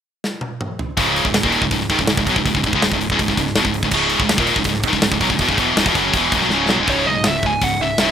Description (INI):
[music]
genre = heavy metal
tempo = 163 BPM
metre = 4/4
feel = straight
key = C# minor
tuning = A4 = 440 Hz
[part]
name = tight metal drum kit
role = drums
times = 0.2-8.1 s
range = crash cymbal, hi-hat, kick drum, snare drum, toms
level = -20 LUFS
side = equal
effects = none
[part]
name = heavy high-gain guitar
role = riff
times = 1.0-8.1 s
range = C#2 to G#3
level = -22 LUFS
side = right 13 dB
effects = distortion
[part]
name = scooped high-gain guitar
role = riff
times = 1.0-8.1 s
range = C#2 to G#3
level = -18 LUFS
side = left 6 dB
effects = distortion
[part]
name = growling fingered electric bass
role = bass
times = 1.0-8.1 s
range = C#1 to C#2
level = -29 LUFS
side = equal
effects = overdrive
[part]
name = high-gain lead guitar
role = melody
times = 6.9-8.1 s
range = C#5 to G#5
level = -19 LUFS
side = right 2 dB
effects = distortion
[sound]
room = small room ambience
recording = rough home demo mix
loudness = -15 LUFS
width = side -8 dB against mid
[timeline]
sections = 1.0-6.9 A section; 6.9-8.1 B section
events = drum fill 0.2-1.0, 6.5-6.9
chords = 0.0 N.C.; 1.0 C#m; 6.9 C#5